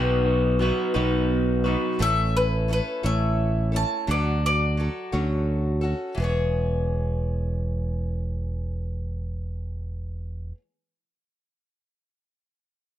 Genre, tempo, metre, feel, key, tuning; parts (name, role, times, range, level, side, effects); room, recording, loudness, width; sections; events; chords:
folk rock and heartland rock; 58 BPM (dotted quarters); 6/8; straight; E major; A4 = 442 Hz
bowl-back mandolin; melody; 0.0-5.1 s; G#4 to A5; -27 LUFS; left 1 dB
picked old ladder-braced acoustic guitar; accompaniment; 0.0-10.6 s; A2 to C#5; -28 LUFS; left 2 dB
electric guitar through a small old amp; riff; 0.0-2.0 s; B2 to F#4; -26 LUFS; right 2 dB; phaser
fingered electric bass; bass; 0.0-10.5 s; E1 to D2; -25 LUFS; right 1 dB
light reverb, small room ambience; dark, warm production; -22 LUFS; side -12 dB against mid
0.0-6.2 A section; 6.2-10.4 B section
mandolin solo 0.0-6.2
0.0 B; 2.0 A; 4.1 Dmaj7; 6.2 E6